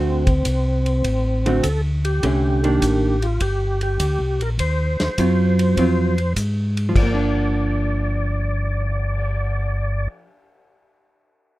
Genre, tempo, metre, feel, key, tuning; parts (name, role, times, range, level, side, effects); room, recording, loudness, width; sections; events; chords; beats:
soul jazz organ trio; 101 BPM; 4/4; swing 69% on 8ths; G minor; A4 = 436 Hz
overdriven tonewheel organ; melody; 0.0-10.1 s; C4 to D5; -25 LUFS; equal; slow rotary speaker, chorus vibrato
vintage hollow-body jazz guitar; accompaniment; 0.0-10.5 s; D3 to F#4; -21 LUFS; right 2 dB
mellow tonewheel organ; bass; 0.0-10.1 s; G1 to Ab2; -21 LUFS; equal; slow rotary speaker
warm soul drum kit; drums; 0.3-9.2 s; crash cymbal, cymbal swell, hi-hat, kick drum, ride cymbal, snare drum; -25 LUFS; equal
little or no reverb; rough home demo mix; -18 LUFS; side -17 dB against mid
0.0-7.0 A section; 7.0-9.3 B section
0.0 D7; 2.2 Cm9; 4.6 Ab6; 7.0 Gm7
0.45 1.04 1.63 | 2.22 2.81 3.41 4.00 | 4.59 5.18 5.77 6.36 | 6.95 7.54 8.13 8.73